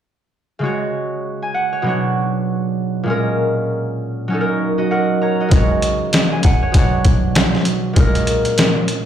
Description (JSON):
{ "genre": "hip hop, boom-bap hip-hop", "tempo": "98 BPM", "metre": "4/4", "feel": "swing 61% on 16ths", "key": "unclear", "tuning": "A4 = 440 Hz", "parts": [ { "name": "concert harp", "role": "accompaniment", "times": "0.6-9.1 s", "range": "A#2 to A#5", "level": "-17 LUFS", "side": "right 1 dB", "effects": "cassette tape, high-pass filter, low-pass filter" }, { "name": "boom bap sampler-style drum kit", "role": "drums", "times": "5.5-9.1 s", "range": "hi-hat, kick drum, snare drum", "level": "-15 LUFS", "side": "equal", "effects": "none" } ], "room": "light reverb", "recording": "played on a big sound system in a bare room, large studio reverb", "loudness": "-15 LUFS", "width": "side -10 dB against mid", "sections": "0.6-9.1 A section", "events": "none", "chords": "0.6 C#sus4; 1.8 Bmadd9; 3.1 A#m7; 4.3 F#6; 5.5 C#sus4; 6.7 Bmadd9; 8.0 A#m7", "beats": "| 0.62 1.23 1.84 2.46 | 3.07 3.68 4.29 4.91 | 5.52 6.13 6.74 7.36 | 7.97 8.58" }